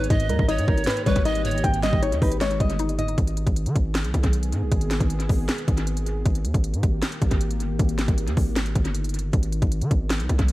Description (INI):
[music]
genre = hip hop, trap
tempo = 156 BPM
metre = 4/4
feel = half-time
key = G# harmonic minor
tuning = A4 = 442 Hz
[part]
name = flamenco guitar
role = melody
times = 0.0-3.2 s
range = A#4 to G5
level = -27 LUFS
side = left 1 dB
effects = analog delay
[part]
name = breathy bright pan flute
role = second line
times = 0.0-2.0 s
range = B4 to D#5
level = -30 LUFS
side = right 4 dB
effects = analog delay
[part]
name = mallet-like synth pluck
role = accompaniment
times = 0.0-3.2 s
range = G#2 to D#4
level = -28 LUFS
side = left 2 dB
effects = chorus, phaser, low-pass filter, analog delay
[part]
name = dark analog pad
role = sustained chords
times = 0.0-10.5 s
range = D#3 to G#4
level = -33 LUFS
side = left 1 dB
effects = chorus
[part]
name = distorted 808-style bass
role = bass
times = 0.0-10.5 s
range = G1 to D#3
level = -24 LUFS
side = equal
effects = distortion
[part]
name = trap drum kit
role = drums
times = 0.0-10.5 s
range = handclaps, hi-hat, kick drum, snare drum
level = -24 LUFS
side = equal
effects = analog delay
[sound]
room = digital ambience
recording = echo-heavy mix, vinyl crackle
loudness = -20 LUFS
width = side -18 dB against mid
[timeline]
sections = 0.0-3.2 A section; 3.2-10.5 B section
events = none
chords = 0.1 D#; 3.2 G#m; 6.3 D#; 9.3 G#m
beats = | 0.10 0.49 0.87 1.26 | 1.64 2.02 2.41 2.79 | 3.18 3.56 3.95 4.33 | 4.72 5.10 5.49 5.87 | 6.26 6.64 7.03 7.41 | 7.79 8.18 8.56 8.95 | 9.33 9.72 10.10 10.49